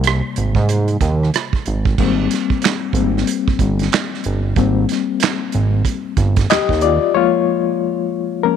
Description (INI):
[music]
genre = R&B, neo-soul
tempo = 93 BPM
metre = 4/4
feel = swing 61% on 16ths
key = unclear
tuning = A4 = 440 Hz
[part]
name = barky reed electric piano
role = accompaniment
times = 0.0-8.6 s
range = B#2 to D#5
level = -19 LUFS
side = left 10 dB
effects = overdrive, fast tremolo
[part]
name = fat analog bass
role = bass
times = 0.0-7.0 s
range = G1 to G#2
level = -17 LUFS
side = right 2 dB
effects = tube saturation
[part]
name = warm soul drum kit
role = drums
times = 0.0-7.0 s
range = crash cymbal, handclaps, hi-hat, kick drum, rim click, snare drum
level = -19 LUFS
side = right 5 dB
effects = none
[sound]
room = light reverb, studio ambience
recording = 1960s-style stereo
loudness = -15 LUFS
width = side -8 dB against mid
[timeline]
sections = 0.0-2.0 A section; 2.0-7.1 B section; 7.1-8.6 C section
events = reed electric piano solo 2.0-7.1, 7.1-8.6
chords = 0.0 G#maj9; 7.1 A#m7/E#